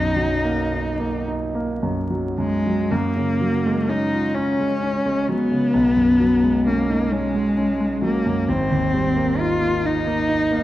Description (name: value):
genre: classical, impressionist duo for cello and grand piano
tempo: 34-45 BPM (dotted quarters)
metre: 6/8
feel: rubato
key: F# major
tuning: A4 = 440 Hz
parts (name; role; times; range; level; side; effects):
- rich cello; melody; 0.0-10.6 s; G#3 to E#4; -20 LUFS; left 1 dB; none
- warm concert grand piano; accompaniment; 0.0-10.6 s; G#1 to E#4; -22 LUFS; right 1 dB; none
room: wet scoring stage reverb, RT60 1.7 s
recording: dark, warm production, vinyl crackle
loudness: -18 LUFS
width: side -14 dB against mid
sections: 0.0-2.9 A section; 2.9-10.6 B section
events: none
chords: 0.0 Bmaj7; 2.9 F#maj9; 5.7 B69; 8.5 G#maj9